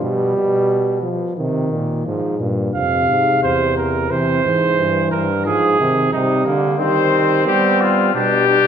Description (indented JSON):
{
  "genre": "classical, imitative canzona for brass ensemble",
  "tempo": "88 BPM",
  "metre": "3/4",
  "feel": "straight",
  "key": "F minor",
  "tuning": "A4 = 440 Hz",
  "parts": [
    { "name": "mellow trombone", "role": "accompaniment", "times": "0.0-8.7 s", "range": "Bb2 to B3", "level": "-20 LUFS", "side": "equal", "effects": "none" },
    { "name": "bright bass trombone", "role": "bass", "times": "0.0-8.6 s", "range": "E2 to G3", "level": "-20 LUFS", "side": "right 1 dB", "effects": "none" },
    { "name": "clear flugelhorn", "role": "second line", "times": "2.8-8.7 s", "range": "Bb3 to F5", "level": "-18 LUFS", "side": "right 3 dB", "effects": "none" },
    { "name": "warm trumpet", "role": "melody", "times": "6.8-8.7 s", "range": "F4 to C5", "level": "-16 LUFS", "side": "left 10 dB", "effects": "none" }
  ],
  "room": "wet recital hall reverb, RT60 1.9 s",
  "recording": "minimal, uncompressed stereo recording",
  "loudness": "-15 LUFS",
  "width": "side -8 dB against mid",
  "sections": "0.0-2.1 A section; 2.1-8.7 B section",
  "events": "none",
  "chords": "0.0 G/B; 1.4 Cm; 2.1 Fm; 3.4 C/E; 4.1 C; 5.5 Fm/Ab; 6.1 Cm; 7.5 G; 8.2 G/B"
}